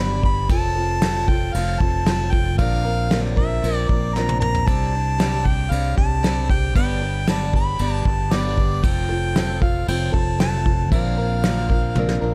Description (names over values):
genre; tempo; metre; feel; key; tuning
folk rock and heartland rock; 115 BPM; 4/4; straight; F major; A4 = 440 Hz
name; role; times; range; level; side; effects
warm harmonica; melody; 0.0-12.3 s; D5 to B5; -28 LUFS; equal; none
picked acoustic archtop guitar; accompaniment; 0.0-12.3 s; G2 to Bb4; -30 LUFS; equal; none
fingered electric bass; bass; 0.0-12.3 s; F1 to C2; -25 LUFS; equal; none
soft brush drum kit; drums; 0.2-12.2 s; crash cymbal, kick drum, snare drum, toms; -24 LUFS; equal; none
room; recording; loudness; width
small room ambience; dark, warm production; -20 LUFS; mono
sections
0.0-12.3 A section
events
drum fill 4.2-4.7, 12.0-12.3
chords
0.0 G; 0.5 F; 2.6 Bbadd9; 4.7 Csus2; 6.8 G; 8.8 F; 10.9 Bbadd9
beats
| 0.50 1.02 1.55 2.07 | 2.59 3.11 3.63 4.15 | 4.67 5.20 5.71 6.24 | 6.76 7.28 7.80 8.32 | 8.84 9.36 9.88 10.40 | 10.92 11.44 11.96